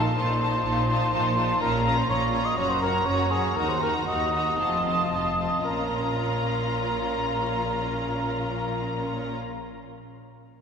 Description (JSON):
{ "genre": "quick classical-period movement for symphony orchestra", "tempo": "110-125 BPM", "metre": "4/4", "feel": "rubato", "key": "Bb minor", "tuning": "A4 = 441 Hz", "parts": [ { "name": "rich studio violin section", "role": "melody", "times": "0.0-9.3 s", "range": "A5 to Bb5", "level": "-32 LUFS", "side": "left 3 dB", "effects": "none" }, { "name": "mellow cor anglais", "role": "second line", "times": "0.0-9.3 s", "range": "Ab4 to Eb5", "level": "-27 LUFS", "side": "right 1 dB", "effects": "none" }, { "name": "warm studio violin section", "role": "second line", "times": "0.0-9.3 s", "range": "F4 to Gb4", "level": "-32 LUFS", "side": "left 3 dB", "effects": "none" }, { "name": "rich studio viola section", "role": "accompaniment", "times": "0.0-9.4 s", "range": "C4 to Eb4", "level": "-34 LUFS", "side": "equal", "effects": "none" }, { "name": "rich studio cello section", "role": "bass", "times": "0.0-9.3 s", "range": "Eb2 to Bb2", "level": "-32 LUFS", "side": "right 1 dB", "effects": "none" }, { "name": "rich studio double bass section", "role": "bass", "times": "0.0-9.3 s", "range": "F1 to Eb2", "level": "-32 LUFS", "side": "equal", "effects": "none" } ], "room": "wet church reverb, RT60 3.1 s", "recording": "minimal, uncompressed stereo recording", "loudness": "-23 LUFS", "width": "side -6 dB against mid", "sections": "0.0-5.6 A section; 5.6-9.8 B section", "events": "slowing down 0.6-5.6", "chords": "0.0 F7/Bb; 1.6 Bbm; 2.6 Gb; 3.6 Ebm; 4.6 F7; 5.6 Bbm" }